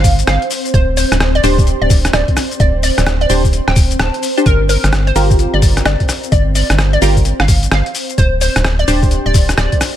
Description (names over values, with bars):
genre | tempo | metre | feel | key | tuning
UK garage, two-step garage | 129 BPM | 4/4 | swing 63% on 16ths | G minor | A4 = 442 Hz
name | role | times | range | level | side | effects
hollow square pluck | melody | 0.0-9.8 s | Bb4 to A5 | -20 LUFS | equal | analog chorus, ping-pong delay
ethereal airy pad | sustained chords | 0.0-10.0 s | C4 to C5 | -23 LUFS | right 1 dB | ensemble chorus, built-in reverb, sidechain pumping
organ-like FM bass | bass | 0.0-9.7 s | D1 to G1 | -15 LUFS | equal | none
boom bap sampler-style drum kit | drums | 0.0-9.9 s | hi-hat, rim click, shaker | -18 LUFS | left 1 dB | small room reverb
electronic kick drum | drums | 0.0-9.8 s | none | -13 LUFS | equal | small room reverb
punchy chord stab | stabs | 1.4-10.0 s | D4 to C5 | -19 LUFS | equal | chorus, phaser
room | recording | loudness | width
little or no reverb | none | -11 LUFS | side -11 dB against mid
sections
0.0-10.0 A section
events
none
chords
0.0 G7(no3); 0.7 D7sus4; 4.5 Gm7; 8.2 D7sus4